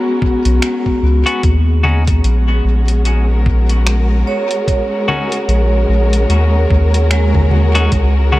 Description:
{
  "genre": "ambient dub",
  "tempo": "74 BPM",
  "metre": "4/4",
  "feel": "swing 58% on 16ths",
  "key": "Eb minor",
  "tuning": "A4 = 440 Hz",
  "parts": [
    { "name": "dark symphonic string section", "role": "sustained chords", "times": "0.0-8.4 s", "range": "Ab3 to Bb4", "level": "-21 LUFS", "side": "left 2 dB", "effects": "none" },
    { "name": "vibraphone with hard mallets", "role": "arpeggios", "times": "0.0-8.4 s", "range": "Ab3 to Db5", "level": "-20 LUFS", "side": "right 2 dB", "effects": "dub echo" },
    { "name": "electronic kick drum", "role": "drums", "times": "0.2-8.1 s", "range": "none", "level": "-17 LUFS", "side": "equal", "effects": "small room ambience" },
    { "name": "soft dub sub bass", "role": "bass", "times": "0.5-8.4 s", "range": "Bb1 to Eb2", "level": "-12 LUFS", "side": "equal", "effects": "none" },
    { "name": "lo-fi sampler-style drum kit", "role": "drums", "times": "0.5-8.4 s", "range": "congas, finger snaps, hi-hat", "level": "-23 LUFS", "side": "left 2 dB", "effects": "small room ambience, dub echo" },
    { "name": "clean electric guitar", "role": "stabs", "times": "1.3-8.4 s", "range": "Cb4 to Gb4", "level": "-22 LUFS", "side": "left 2 dB", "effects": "dub echo" }
  ],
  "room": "digital ambience",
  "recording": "none",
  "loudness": "-11 LUFS",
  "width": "side -17 dB against mid",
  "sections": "0.0-8.4 A section",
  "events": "fade-in on string section 0.0-8.4",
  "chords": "0.0 Db7sus4; 1.4 Ebm7",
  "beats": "0.62 | 1.44 2.25 3.06 3.87 | 4.68 5.49 6.30 7.11 | 7.92"
}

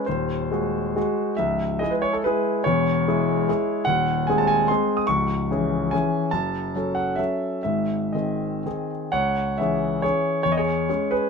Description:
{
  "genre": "classical, romantic triple-time dance for piano with dotted rhythms",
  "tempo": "112-157 BPM",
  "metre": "3/4",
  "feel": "rubato",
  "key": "C# minor",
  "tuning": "A4 = 440 Hz",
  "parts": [
    { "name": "clear concert grand piano", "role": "solo", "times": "0.0-11.3 s", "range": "C#1 to D#6", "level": "-21 LUFS", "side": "left 1 dB", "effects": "none" }
  ],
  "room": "moderate studio ambience, RT60 0.5 s",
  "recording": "minimal, uncompressed stereo recording",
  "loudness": "-21 LUFS",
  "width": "side -5 dB against mid",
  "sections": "0.0-9.1 A section; 9.1-11.3 B section",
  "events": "none",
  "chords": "0.1 G#7/D#; 1.4 C#m; 2.7 C#m/E; 3.9 G#7/D#; 5.1 C#m; 6.3 F#m; 7.6 G#; 9.1 C#m; 10.5 C#m/E",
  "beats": "| 0.08 0.51 0.96 | 1.38 1.81 2.25 | 2.66 3.06 3.48 | 3.87 4.28 4.70 | 5.08 5.50 5.93 | 6.33 6.75 7.19 | 7.65 8.15 8.66 | 9.14 9.60 10.03 | 10.45 10.89"
}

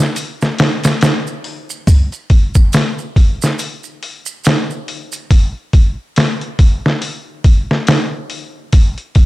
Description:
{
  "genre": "trip hop",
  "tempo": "70 BPM",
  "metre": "4/4",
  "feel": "swing 59% on 16ths",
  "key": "none",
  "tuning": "none",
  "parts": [
    { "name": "trip hop sampler-style drum kit", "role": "drums", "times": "0.0-9.3 s", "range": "hi-hat, kick drum, snare drum", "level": "-12 LUFS", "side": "equal", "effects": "none" },
    { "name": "maracas", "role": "percussion", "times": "0.2-5.3 s", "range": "none", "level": "-28 LUFS", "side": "right 8 dB", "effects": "none" }
  ],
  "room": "little or no reverb",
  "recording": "none",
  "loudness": "-12 LUFS",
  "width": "side -18 dB against mid",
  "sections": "0.0-5.3 A section; 5.3-9.3 B section",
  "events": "none",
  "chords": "none",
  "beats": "0.16 1.02 | 1.87 2.73 3.59 4.45 | 5.30 6.16 7.02 7.87 | 8.73"
}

